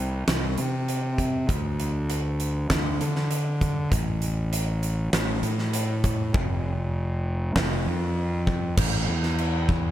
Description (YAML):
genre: post-rock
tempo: 99 BPM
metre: 4/4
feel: straight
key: A minor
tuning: A4 = 438 Hz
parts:
  - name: fuzz fingered electric bass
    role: bass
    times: 0.0-9.9 s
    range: F1 to D3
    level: -25 LUFS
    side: equal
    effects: overdrive
  - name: huge arena drum kit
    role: drums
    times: 0.3-9.8 s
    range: crash cymbal, hi-hat, kick drum, snare drum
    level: -27 LUFS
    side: equal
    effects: none
room: little or no reverb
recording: none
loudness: -23 LUFS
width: side -12 dB against mid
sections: 0.0-8.8 A section; 8.8-9.9 B section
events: build-up 0.0-8.8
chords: none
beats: 0.28 0.88 | 1.49 2.10 2.71 3.31 | 3.92 4.53 5.14 5.75 | 6.35 6.96 7.57 8.18 | 8.78 9.39